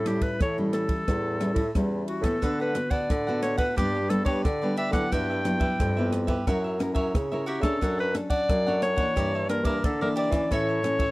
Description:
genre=samba and choro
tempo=89 BPM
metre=4/4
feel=straight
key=unclear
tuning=A4 = 440 Hz
part: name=breathy clarinet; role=melody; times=0.0-11.1 s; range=F#4 to G5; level=-28 LUFS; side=left 1 dB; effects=none
part: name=nylon-string guitar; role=accompaniment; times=0.0-11.1 s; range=G2 to A#4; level=-29 LUFS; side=equal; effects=none
part: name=warm bassoon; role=bass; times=0.0-11.1 s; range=E2 to E3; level=-30 LUFS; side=equal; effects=none
part: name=open jazz drum kit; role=drums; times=0.1-11.1 s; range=kick drum, ride cymbal, rim click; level=-29 LUFS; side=equal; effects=none
part: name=cavaquinho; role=accompaniment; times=2.4-11.1 s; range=D4 to F#5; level=-34 LUFS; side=right 2 dB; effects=none
room=small room ambience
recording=dry, close 1970s-style studio recording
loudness=-23 LUFS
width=side -20 dB against mid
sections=0.0-11.1 A section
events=none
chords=0.0 A7; 2.4 D6; 3.8 G; 5.1 Emadd9/G; 6.5 F#7; 9.2 Gm6; 10.5 A

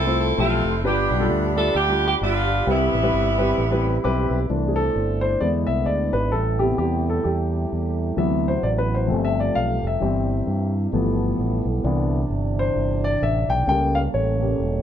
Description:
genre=gospel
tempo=131 BPM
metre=4/4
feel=swing 57% on 8ths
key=C major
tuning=A4 = 440 Hz
part: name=clear saxophone section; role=melody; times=0.0-4.1 s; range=G3 to A4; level=-22 LUFS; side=right 2 dB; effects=plate reverb
part: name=mellow tonewheel organ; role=sustained chords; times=0.0-14.8 s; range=C3 to C6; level=-29 LUFS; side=right 5 dB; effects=fast rotary speaker
part: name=fingered electric bass with an envelope filter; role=bass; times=0.0-14.8 s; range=E1 to G2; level=-24 LUFS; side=equal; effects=none
part: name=dark concert grand piano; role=accompaniment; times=0.1-14.8 s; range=G2 to D6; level=-23 LUFS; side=left 3 dB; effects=none
part: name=mellow French horn section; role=sustained chords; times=4.5-14.8 s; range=C3 to D5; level=-33 LUFS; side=right 1 dB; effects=none
room=light reverb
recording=none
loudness=-19 LUFS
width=side -9 dB against mid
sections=0.0-4.5 A section; 4.5-14.8 B section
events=grand piano fill 3.8-4.5; grand piano solo 4.5-14.8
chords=0.0 Fmaj7; 0.8 G7; 2.7 Cmaj7; 4.5 C69; 5.4 E7; 6.3 Am7; 8.2 D13; 9.1 G9sus4; 10.0 C/G; 10.9 G13; 11.8 Cmaj9; 13.7 A7b9

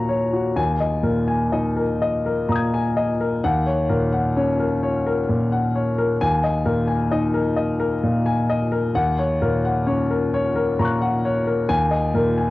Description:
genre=neoclassical minimalist piano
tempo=43 BPM (dotted quarters)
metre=6/8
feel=rubato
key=unclear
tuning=A4 = 440 Hz
part: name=warm concert grand piano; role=solo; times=0.0-12.5 s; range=Eb2 to Ab6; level=-18 LUFS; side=left 1 dB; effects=none
room=moderate booth ambience, RT60 0.3 s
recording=home recording on cassette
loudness=-18 LUFS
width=side -17 dB against mid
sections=0.0-12.5 A section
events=none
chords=0.0 Gb/Eb; 0.6 Absus2/Eb; 3.4 Gb/Eb; 6.2 Absus2/Eb; 9.0 Gb/Eb; 11.7 Absus2/Eb

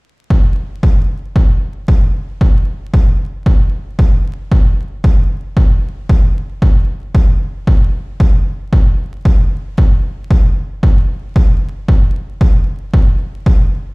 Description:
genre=techno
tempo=114 BPM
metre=4/4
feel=swing 55% on 16ths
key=none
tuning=none
part: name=electronic kick drum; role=drums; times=0.3-13.6 s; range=none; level=-11 LUFS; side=equal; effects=none
room=little or no reverb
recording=played on a big sound system in a bare room, stone room reverb, vinyl crackle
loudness=-11 LUFS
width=side -27 dB against mid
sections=0.3-13.9 A section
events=none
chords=none

